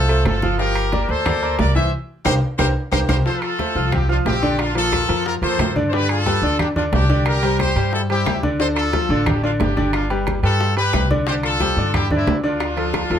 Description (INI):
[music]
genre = latin, salsa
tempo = 180 BPM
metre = 4/4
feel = straight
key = F major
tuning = A4 = 442 Hz
[part]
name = brilliant trumpet section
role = melody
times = 0.0-13.2 s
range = C4 to E5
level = -22 LUFS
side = left 1 dB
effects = none
[part]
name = bright grand piano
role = accompaniment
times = 0.0-13.2 s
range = D3 to F5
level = -22 LUFS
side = equal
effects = none
[part]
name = upright bass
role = bass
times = 0.0-13.2 s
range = G1 to G2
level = -21 LUFS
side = equal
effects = none
[part]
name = bongos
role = percussion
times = 0.1-13.1 s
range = none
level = -30 LUFS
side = left 5 dB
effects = none
[part]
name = congas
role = percussion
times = 0.1-13.2 s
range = none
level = -26 LUFS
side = left 1 dB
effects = none
[part]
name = timbales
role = percussion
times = 0.1-13.2 s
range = none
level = -28 LUFS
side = right 6 dB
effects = none
[part]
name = claves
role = percussion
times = 0.3-13.1 s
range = none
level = -32 LUFS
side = left 8 dB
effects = none
[sound]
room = light reverb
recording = none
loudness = -16 LUFS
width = side -9 dB against mid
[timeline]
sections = 0.0-3.3 A section; 3.3-13.2 B section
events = band accent 1.9-3.3; drum fill 2.4-3.3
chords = 0.0 F; 0.6 Gm7; 1.9 C5; 3.3 F; 4.6 Bbadd9; 5.9 G5; 7.3 Cadd9; 8.6 Dm; 9.9 G; 11.3 Cadd9; 12.6 Dm